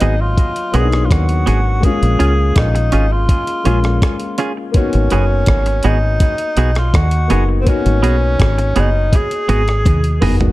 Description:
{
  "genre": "lovers rock reggae",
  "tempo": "82 BPM",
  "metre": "4/4",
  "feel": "straight",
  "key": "G# dorian",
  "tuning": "A4 = 440 Hz",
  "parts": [
    { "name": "breathy tenor saxophone", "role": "melody", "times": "0.0-10.2 s", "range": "B#3 to G#4", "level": "-20 LUFS", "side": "equal", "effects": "tape echo" },
    { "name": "warm grand piano", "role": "accompaniment", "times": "0.0-10.5 s", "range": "F#3 to F#4", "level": "-22 LUFS", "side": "left 5 dB", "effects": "none" },
    { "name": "semi-hollow electric guitar", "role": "stabs", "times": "0.0-10.4 s", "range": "B3 to G#4", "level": "-22 LUFS", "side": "right 4 dB", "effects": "tape echo" },
    { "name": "deep dub fingered electric bass", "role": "bass", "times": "0.0-10.5 s", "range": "F#1 to D#2", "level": "-15 LUFS", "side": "equal", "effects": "none" },
    { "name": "breakbeat sampler-style drum kit", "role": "drums", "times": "0.0-10.5 s", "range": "hi-hat, kick drum, rim click, toms", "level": "-16 LUFS", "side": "equal", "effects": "none" }
  ],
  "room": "little or no reverb",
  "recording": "dark, warm production",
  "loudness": "-12 LUFS",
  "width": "side -17 dB against mid",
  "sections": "0.0-10.5 A section",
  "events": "drum fill 9.8-10.5",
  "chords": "0.0 G#m7; 1.8 A#m7; 4.7 G#m7"
}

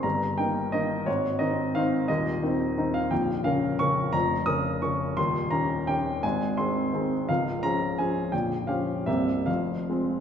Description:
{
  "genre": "classical, piano waltz",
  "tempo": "140-184 BPM",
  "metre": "3/4",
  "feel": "rubato",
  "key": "unclear",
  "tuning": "A4 = 441 Hz",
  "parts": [
    { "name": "clear baby grand piano", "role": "solo", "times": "0.0-10.2 s", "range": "Bb0 to Eb6", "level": "-24 LUFS", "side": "equal", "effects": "none" }
  ],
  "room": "wet recital hall reverb, RT60 1.8 s",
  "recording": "recorded in a church or concert hall",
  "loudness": "-24 LUFS",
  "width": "side -8 dB against mid",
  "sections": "0.0-10.2 A section",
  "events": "none",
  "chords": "0.0 Eb/G; 1.1 Ab; 3.1 Bbm; 5.2 Eb7; 6.2 Ab; 7.3 Db; 8.3 Gm7b5/Bb; 9.1 C7; 9.5 Fm"
}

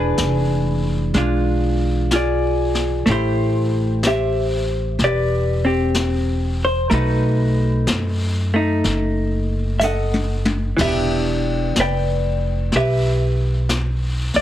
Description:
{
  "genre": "jazz ballad",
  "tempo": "62 BPM",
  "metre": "4/4",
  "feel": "swing 68% on 8ths",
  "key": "unclear",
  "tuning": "A4 = 441 Hz",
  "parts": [
    { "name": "vintage hollow-body jazz guitar", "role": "accompaniment", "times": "0.0-14.4 s", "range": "E3 to G5", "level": "-20 LUFS", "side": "equal", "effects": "none" },
    { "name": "upright bass", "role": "bass", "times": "0.0-14.4 s", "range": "E1 to F#2", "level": "-20 LUFS", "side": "equal", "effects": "none" },
    { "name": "jazz brush drum kit", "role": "drums", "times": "0.2-14.4 s", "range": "brushed snare drum, hi-hat, kick drum, ride cymbal, snare drum, toms", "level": "-26 LUFS", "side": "left 2 dB", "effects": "none" }
  ],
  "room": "light reverb",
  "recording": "heavily compressed radio sound, multiband compression",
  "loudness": "-17 LUFS",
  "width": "side -12 dB against mid",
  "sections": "0.0-14.4 A section",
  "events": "drum fill 9.8-10.8",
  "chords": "0.0 E7b9; 3.1 Am9; 6.9 B7; 10.8 Em7"
}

